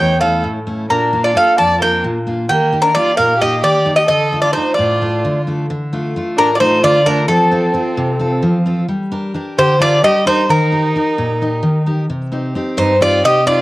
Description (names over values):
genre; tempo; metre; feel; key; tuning
greek folk, Greek bouzouki band; 263 BPM (eighths); 7/8; straight; D phrygian; A4 = 437 Hz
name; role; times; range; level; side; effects
Greek bouzouki; melody; 0.0-13.6 s; G4 to A5; -14 LUFS; equal; none
rich violin; second line; 0.0-13.6 s; Bb3 to D5; -20 LUFS; right 2 dB; none
picked steel-string acoustic guitar; accompaniment; 0.0-13.6 s; E2 to Bb4; -18 LUFS; equal; none
room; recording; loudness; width
light reverb, studio reverb; home recording on cassette; -12 LUFS; side -18 dB against mid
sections
0.0-5.7 A section; 5.7-13.6 B section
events
none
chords
0.0 A; 0.9 Bb; 2.5 Eb; 4.1 Dm; 7.3 F; 8.9 Gm; 10.5 Eb; 12.1 Cm